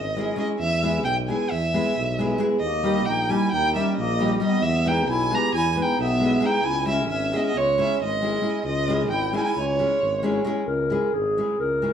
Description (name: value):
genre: balkan folk, Balkan wedding band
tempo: 268 BPM (eighths)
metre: 9/8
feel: straight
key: C# dorian sharp4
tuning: A4 = 441 Hz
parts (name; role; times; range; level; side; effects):
- warm violin; melody; 0.0-10.5 s; C#5 to A#5; -24 LUFS; right 2 dB; none
- mellow tuba; bass; 0.0-11.9 s; G#1 to E2; -28 LUFS; equal; none
- nylon-string guitar; accompaniment; 0.2-11.9 s; G3 to G#4; -26 LUFS; left 1 dB; none
- dark clarinet; second line; 2.6-11.9 s; G#3 to A#4; -27 LUFS; left 1 dB; none
room: wet large studio reverb, RT60 1.1 s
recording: band playing live in one room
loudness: -20 LUFS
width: side -8 dB against mid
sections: 0.0-10.7 A section; 10.7-11.9 B section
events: clarinet solo 10.7-11.9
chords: 0.0 C#m; 0.6 E; 2.6 D#; 4.6 E; 6.6 C#m